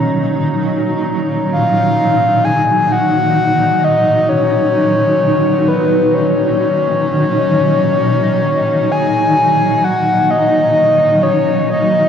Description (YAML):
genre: ambient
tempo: free time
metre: none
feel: none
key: Eb minor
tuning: A4 = 440 Hz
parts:
  - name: granular cloud pad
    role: sustained chords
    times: 0.0-12.1 s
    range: Bb2 to Eb4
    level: -15 LUFS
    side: right 1 dB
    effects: built-in reverb
  - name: glass harmonica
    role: texture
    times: 0.0-12.1 s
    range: Db5 to Db6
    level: -28 LUFS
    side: left 1 dB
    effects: none
  - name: breathy flute-like synth lead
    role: melody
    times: 1.5-12.1 s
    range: Cb5 to Ab5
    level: -13 LUFS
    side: left 2 dB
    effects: chorus, tape echo
room: wet concert hall reverb, RT60 2.2 s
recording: worn, warbling old tape, cassette tape, warbly pitch drift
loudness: -11 LUFS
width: side -8 dB against mid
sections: 0.0-2.4 A section; 2.4-12.1 B section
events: none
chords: 0.0 Ebm7